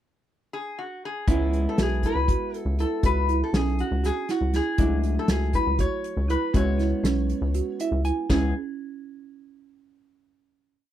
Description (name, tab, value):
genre	progressive instrumental, band music in an uneven meter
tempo	239 BPM (eighths)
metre	7/8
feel	straight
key	C# phrygian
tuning	A4 = 440 Hz
part	metal-body resonator slide guitar	melody	0.5-8.5 s	F#4 to C#5	-30 LUFS	left 4 dB	none
part	vintage hollow-body jazz guitar	accompaniment	1.3-8.5 s	F#3 to G#5	-31 LUFS	left 1 dB	none
part	folk marimba with soft mallets	arpeggios	1.3-8.5 s	C#4 to F#4	-29 LUFS	right 8 dB	none
part	rubbery square bass	bass	1.3-8.5 s	B1 to C#2	-25 LUFS	left 1 dB	none
part	unplugged drum kit	drums	1.3-8.4 s	hi-hat, kick drum, snare drum, splash cymbal	-25 LUFS	equal	none
room	little or no reverb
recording	dry, close 1970s-style studio recording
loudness	-22 LUFS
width	side -12 dB against mid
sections	0.0-1.3 pickup bar; 1.3-8.3 A section; 8.3-10.1 final chord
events	hollow-body jazz guitar fill 7.5-8.3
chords	0.0 N.C.; 1.3 C#m7; 4.8 Dadd9/C#; 6.5 C#m7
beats	0.02 0.27 0.52 0.77 1.02 | 1.27 1.52 1.78 2.03 2.28 2.53 2.78 | 3.03 3.28 3.53 3.78 4.03 4.29 4.54 | 4.79 5.04 5.29 5.54 5.79 6.04 6.29 | 6.54 6.79 7.04 7.29 7.54 7.80 8.05 | 8.30